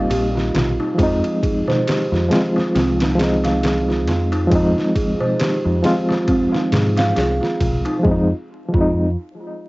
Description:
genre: trip hop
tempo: 68 BPM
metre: 4/4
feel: swing 57% on 16ths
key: unclear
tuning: A4 = 439 Hz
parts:
  - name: barky reed electric piano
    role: accompaniment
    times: 0.0-9.1 s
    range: F3 to F4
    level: -20 LUFS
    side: equal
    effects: medium tremolo, tape echo
  - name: celesta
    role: arpeggios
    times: 0.0-9.1 s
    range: C4 to F5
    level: -22 LUFS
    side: right 1 dB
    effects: tape echo
  - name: deep dub fingered electric bass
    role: bass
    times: 0.1-9.1 s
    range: Bb1 to Ab2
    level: -21 LUFS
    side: equal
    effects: none
  - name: trip hop sampler-style drum kit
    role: drums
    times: 0.1-8.9 s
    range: kick drum, ride cymbal, snare drum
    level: -23 LUFS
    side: equal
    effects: small room reverb, cassette tape
  - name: darbuka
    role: percussion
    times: 0.1-8.0 s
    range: none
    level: -30 LUFS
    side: left 1 dB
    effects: none
room: moderate booth ambience, RT60 0.2 s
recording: home recording on cassette, vinyl crackle, nothing above 7.7 kHz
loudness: -16 LUFS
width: side -22 dB against mid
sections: 0.0-8.0 A section; 8.0-9.7 B section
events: none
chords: 0.0 Eb7; 1.0 Fm7

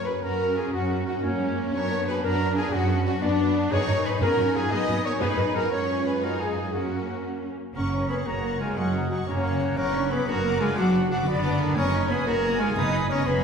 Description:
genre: cinematic, heroic adventure film score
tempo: 120 BPM (dotted quarters)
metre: 6/8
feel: straight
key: F# major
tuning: A4 = 440 Hz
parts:
  - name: rich symphonic violin section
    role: melody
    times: 0.0-13.4 s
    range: C#4 to D#6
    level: -36 LUFS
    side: left 3 dB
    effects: none
  - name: bright silver concert flute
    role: second line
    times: 0.0-13.4 s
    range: C#5 to D#6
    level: -35 LUFS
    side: left 2 dB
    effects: none
  - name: clear clarinet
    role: second line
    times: 0.0-7.6 s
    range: D4 to F#4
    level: -37 LUFS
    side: equal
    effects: none
  - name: mellow cor anglais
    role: second line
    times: 0.0-13.4 s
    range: A#4 to G#5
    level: -38 LUFS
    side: right 1 dB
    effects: none
  - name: warm symphonic violin section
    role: second line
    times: 0.0-13.4 s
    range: A#3 to G#5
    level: -38 LUFS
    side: left 2 dB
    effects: none
  - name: warm symphonic viola section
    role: accompaniment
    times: 0.0-13.4 s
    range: G#3 to A#4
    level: -35 LUFS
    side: equal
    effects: none
  - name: mellow French horn section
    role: sustained chords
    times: 0.0-13.4 s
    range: C#4 to D#5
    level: -28 LUFS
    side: left 2 dB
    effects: none
  - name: clear trumpet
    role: stabs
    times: 0.0-13.4 s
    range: A#3 to D#5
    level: -33 LUFS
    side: right 1 dB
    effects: none
  - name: rich symphonic cello section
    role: bass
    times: 0.0-13.4 s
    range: C#3 to D#4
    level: -30 LUFS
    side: right 2 dB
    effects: none
  - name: warm symphonic double bass section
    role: bass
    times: 0.0-13.4 s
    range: F#1 to F#2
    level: -28 LUFS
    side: right 2 dB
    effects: none
room: wet recital hall reverb, RT60 1.5 s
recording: heard from further back in the room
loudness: -22 LUFS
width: side -6 dB against mid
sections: 0.0-7.8 A section; 7.8-13.4 A section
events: none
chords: 0.0 F#; 1.7 Bm/F#; 3.7 G#m/F#; 5.7 C#/F#; 6.7 F#; 9.8 Bm/F#; 11.8 G#m/F#

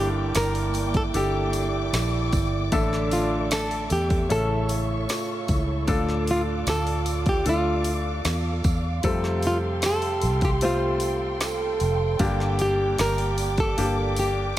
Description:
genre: pop ballad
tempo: 76 BPM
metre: 4/4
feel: straight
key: D minor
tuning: A4 = 440 Hz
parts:
  - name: nylon-string guitar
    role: melody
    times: 0.0-14.6 s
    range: F4 to Bb4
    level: -27 LUFS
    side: equal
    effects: none
  - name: dark French horn section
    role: second line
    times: 0.0-14.6 s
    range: D4 to A4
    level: -31 LUFS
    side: right 5 dB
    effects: none
  - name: clear grand piano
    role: accompaniment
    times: 0.0-14.6 s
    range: G2 to E5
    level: -29 LUFS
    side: left 2 dB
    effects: none
  - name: warm studio string section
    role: sustained chords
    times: 0.0-14.6 s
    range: Bb3 to D6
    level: -33 LUFS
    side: equal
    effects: none
  - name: vintage muted fingered electric bass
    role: bass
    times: 0.0-14.5 s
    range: F1 to F2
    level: -27 LUFS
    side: equal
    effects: none
  - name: deep house drum kit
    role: drums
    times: 0.3-14.4 s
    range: hi-hat, kick drum, snare drum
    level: -28 LUFS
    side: equal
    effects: none
  - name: tambourine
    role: percussion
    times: 0.4-14.6 s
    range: none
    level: -42 LUFS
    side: right 7 dB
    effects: none
room: light reverb, studio reverb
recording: none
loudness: -22 LUFS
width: side -13 dB against mid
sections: 0.0-14.6 A section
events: none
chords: 0.0 Gm; 2.7 Asus4; 4.3 A; 5.9 Dm; 9.0 Fadd9; 12.2 Gm

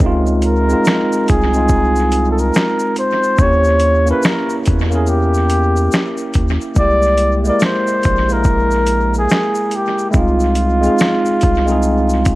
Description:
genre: lo-fi hip hop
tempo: 71 BPM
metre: 4/4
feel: swing 62% on 16ths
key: unclear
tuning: A4 = 442 Hz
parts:
  - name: tine electric piano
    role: accompaniment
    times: 0.0-12.4 s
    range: Ab3 to Bb4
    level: -18 LUFS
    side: right 1 dB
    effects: medium stereo tremolo, cassette tape, tape echo
  - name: saturated sub bass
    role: bass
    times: 0.0-12.4 s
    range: Bb1 to Fb2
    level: -17 LUFS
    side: equal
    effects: none
  - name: dusty soul sampler-style drum kit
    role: drums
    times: 0.0-12.4 s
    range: finger snaps, hi-hat, kick drum, shaker, snare drum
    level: -18 LUFS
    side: equal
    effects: overdrive, tape echo
  - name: breathy flugelhorn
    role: melody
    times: 0.4-12.4 s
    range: E4 to D5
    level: -17 LUFS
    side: equal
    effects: tape echo
room: light reverb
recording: echo-heavy mix, vinyl crackle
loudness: -12 LUFS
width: side -18 dB against mid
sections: 0.0-12.4 A section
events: none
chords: 0.0 Dbmaj9; 3.4 Eb7b9; 6.8 C7b13; 10.1 Fm7/C

